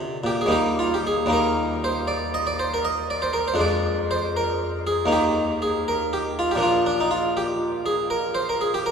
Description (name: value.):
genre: classical, baroque-style suite movement for harpsichord.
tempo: 79 BPM (dotted quarters).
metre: 12/8.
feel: rubato.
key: Eb major.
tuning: A4 = 439 Hz.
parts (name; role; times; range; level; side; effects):
harpsichord; solo; 0.0-8.9 s; Eb2 to Eb5; -21 LUFS; equal; none.
room: wet cathedral reverb, RT60 7.3 s.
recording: heard from further back in the room.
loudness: -21 LUFS.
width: side -6 dB against mid.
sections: 0.5-8.9 A section.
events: none.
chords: 0.0 N.C.; 0.5 Eb; 3.6 Ddim/F; 5.1 Eb; 6.6 Bb.